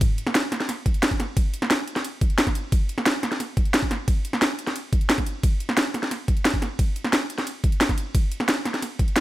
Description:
drum and bass; 177 BPM; 4/4; straight
drum and bass drum kit; drums; 0.0-9.2 s; hi-hat, ride cymbal, snare drum; -23 LUFS; equal; overdrive
electronic kick drum; drums; 0.0-9.1 s; -22 LUFS; equal; overdrive
little or no reverb; -21 LUFS; side -16 dB against mid
0.0-9.2 A section
| 0.01 0.35 0.69 1.03 | 1.37 1.71 2.04 2.38 | 2.72 3.06 3.40 3.74 | 4.08 4.42 4.76 5.10 | 5.43 5.77 6.11 6.45 | 6.79 7.13 7.47 7.81 | 8.15 8.48 8.82 9.16

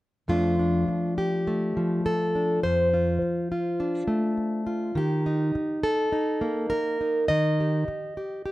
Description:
folk, solo fingerstyle acoustic guitar; 103 BPM; 4/4; straight; F mixolydian; A4 = 435 Hz
fingerpicked plugged-in steel-string acoustic guitar; solo; 0.3-8.5 s; F2 to Eb5; -23 LUFS; equal
light reverb; close, detailed microphones; -23 LUFS; side -17 dB against mid
0.3-8.5 A section
0.3 F6; 5.0 Eb
| 0.28 0.88 1.46 2.05 | 2.64 3.22 3.81 4.39 | 4.97 5.55 6.13 6.71 | 7.30 7.88 8.47

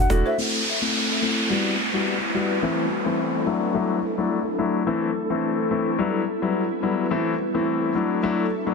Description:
afrobeats; 107 BPM; 4/4; swing 55% on 16ths; A dorian; A4 = 442 Hz
warm concert grand piano; accompaniment; 0.1-8.7 s; E3 to A4; -24 LUFS; left 5 dB; low-pass filter
ethereal airy pad; sustained chords; 0.9-8.7 s; E4 to A4; -27 LUFS; equal; ensemble chorus, built-in reverb, low-pass filter
downlifter; sound effects; 0.4-4.9 s; -26 LUFS; right 1 dB
moderate studio reverb, RT60 0.6 s; dense, heavily limited modern master; -21 LUFS; side -4 dB against mid
0.4-8.7 A section
filter sweep 0.4-8.7
0.4 Am; 1.5 Emadd9; 2.6 Am; 3.5 Dadd9; 4.9 Am; 6.0 Emadd9; 7.1 Am; 8.0 Dadd9
| 0.38 0.94 1.50 2.06 | 2.62 3.19 3.75 4.31 | 4.87 5.43 5.99 6.55 | 7.11 7.67 8.23

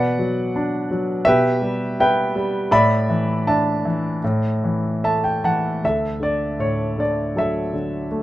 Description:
classical, lyrical solo piano; 73-85 BPM; 4/4; rubato; D major; A4 = 440 Hz
warm grand piano; solo; 0.0-8.2 s; D2 to B5; -18 LUFS; equal
light reverb; nothing above 10.7 kHz; -18 LUFS; side -15 dB against mid
0.0-5.8 A section; 5.8-8.2 B section
grand piano fill 4.6-5.8
0.0 Bm; 1.3 Em/B; 2.7 Asus4; 5.8 Dadd9
0.55 1.26 1.98 | 2.70 3.45 4.22 5.02 | 5.82 6.59 7.36 8.12

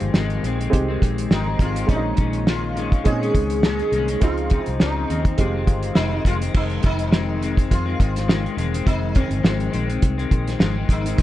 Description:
indie pop, bedroom pop; 103 BPM; 4/4; swing 55% on 16ths; F minor; A4 = 441 Hz
sitar; melody; 0.0-11.2 s; C4 to Ab4; -28 LUFS; equal; analog chorus, tape echo
electric guitar at the edge of break-up; accompaniment; 0.0-11.2 s; F2 to Eb4; -26 LUFS; left 6 dB; analog chorus, vibrato effect
warm upright piano; accompaniment; 0.0-6.6 s; Ab3 to G4; -28 LUFS; right 4 dB
vintage muted fingered electric bass; bass; 0.0-11.2 s; E1 to Bb2; -25 LUFS; equal
cloth-damped thuddy drum kit; drums; 0.0-11.2 s; crash cymbal, hi-hat, kick drum, snare drum; -20 LUFS; equal
small room ambience; dark, warm production; -18 LUFS; side -14 dB against mid
0.0-6.5 A section; 6.5-11.2 A section
0.0 Fm7; 1.9 Bbm11; 4.2 Dbmaj9; 5.4 Fm7
0.15 0.73 1.31 | 1.90 2.48 3.06 3.64 | 4.22 4.80 5.38 5.96 | 6.54 7.12 7.70 8.29 | 8.87 9.45 10.03 10.61 | 11.19

